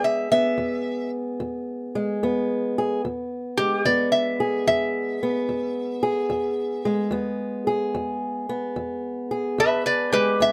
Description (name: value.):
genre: acoustic country blues, solo or duo.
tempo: 73 BPM.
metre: 4/4.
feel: swing 67% on 8ths.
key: E major.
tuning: A4 = 440 Hz.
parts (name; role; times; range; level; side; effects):
lap resonator guitar; melody; 0.0-10.5 s; G4 to E5; -23 LUFS; equal; none.
fingerpicked old ladder-braced acoustic guitar; accompaniment; 0.0-10.5 s; E2 to G#4; -27 LUFS; equal; none.
room: light reverb.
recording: close, detailed microphones.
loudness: -25 LUFS.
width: mono.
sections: 0.0-3.0 A section; 3.0-10.5 B section.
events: resonator guitar played with a steel bar solo 3.0-10.5.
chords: 0.0 E.